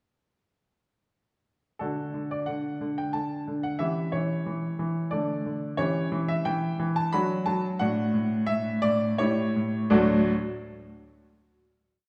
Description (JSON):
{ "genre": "classical-period piano sonatina", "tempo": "81-92 BPM", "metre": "3/4", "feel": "straight", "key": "D major", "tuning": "A4 = 440 Hz", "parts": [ { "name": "bright baby grand piano", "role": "solo", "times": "1.8-10.3 s", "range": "D2 to B5", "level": "-27 LUFS", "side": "equal", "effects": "none" } ], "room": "wet recital hall reverb, RT60 1.7 s", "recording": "heard from further back in the room", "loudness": "-27 LUFS", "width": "mono", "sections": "1.8-9.9 A section; 9.9-12.1 final chord", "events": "slowing down 4.8-9.9", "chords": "1.8 D; 3.8 C#dim/E; 5.1 D5; 5.8 C#dim/E; 7.1 D/F#; 7.8 D/A; 9.2 A7; 9.9 D", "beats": "| 1.82 2.48 3.15 | 3.81 4.47 5.14 | 5.79 6.45 7.12 | 7.80 8.49 9.20 | 9.93" }